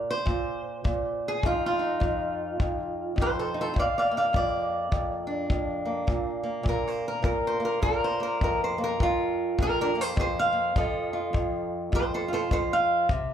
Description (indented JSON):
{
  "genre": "acoustic country blues, solo or duo",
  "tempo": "103 BPM",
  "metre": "4/4",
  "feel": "swing 62% on 8ths",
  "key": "F mixolydian",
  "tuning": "A4 = 440 Hz",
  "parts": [
    { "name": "fingerpicked acoustic archtop guitar", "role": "melody", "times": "0.0-13.3 s", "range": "F2 to F5", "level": "-26 LUFS", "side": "equal", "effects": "none" },
    { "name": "kick drum", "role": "drums", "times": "0.3-13.3 s", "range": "none", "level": "-28 LUFS", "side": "left 1 dB", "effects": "none" }
  ],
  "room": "small room ambience",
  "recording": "live gig heard through the venue's PA, club reverb",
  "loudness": "-24 LUFS",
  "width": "side -9 dB against mid",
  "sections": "0.0-13.3 A section",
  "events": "none",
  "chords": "0.0 N.C.; 1.4 F7(no3); 3.8 Bb; 10.8 F7",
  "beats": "0.27 0.85 | 1.43 2.01 2.59 3.17 | 3.76 4.34 4.92 5.50 | 6.09 6.67 7.25 7.83 | 8.42 9.00 9.59 10.17 | 10.75 11.34 11.92 12.50 | 13.09"
}